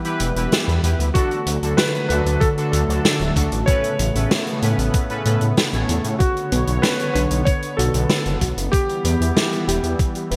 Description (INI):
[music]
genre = synthwave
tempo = 95 BPM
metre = 4/4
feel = straight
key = B minor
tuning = A4 = 440 Hz
[part]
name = warm analog pad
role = sustained chords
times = 0.0-10.4 s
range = C#3 to C#5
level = -28 LUFS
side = equal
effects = subtle chorus, sidechain pumping
[part]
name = analog synth brass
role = stabs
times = 0.0-6.2 s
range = A2 to C#5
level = -29 LUFS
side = equal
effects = chorus, delay
[part]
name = vintage drum kit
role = drums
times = 0.0-10.4 s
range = hi-hat, snare drum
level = -25 LUFS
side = equal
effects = gated reverb
[part]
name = detuned saw bass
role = bass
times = 0.2-10.4 s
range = D1 to A2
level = -23 LUFS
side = equal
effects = chorus
[part]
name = warm electric grand piano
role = melody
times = 1.1-9.9 s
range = F#4 to C#5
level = -28 LUFS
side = equal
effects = analog chorus, digital delay
[part]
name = electronic kick drum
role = drums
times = 1.2-10.1 s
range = none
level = -22 LUFS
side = equal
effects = none
[part]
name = soft round pluck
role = arpeggios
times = 6.5-10.4 s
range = B3 to B4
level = -30 LUFS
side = equal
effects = chorus, cassette tape, delay
[sound]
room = moderate lush hall reverb, RT60 1.9 s, studio ambience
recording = bright 1980s-style digital production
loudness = -20 LUFS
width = mono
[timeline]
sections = 0.0-10.4 A section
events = none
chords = 0.0 Em; 1.2 D; 3.7 Aadd9; 6.2 Bmadd9; 8.7 Em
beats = 0.52 | 1.15 1.78 2.42 3.05 | 3.68 4.31 4.94 5.57 | 6.20 6.84 7.47 8.10 | 8.73 9.36 9.99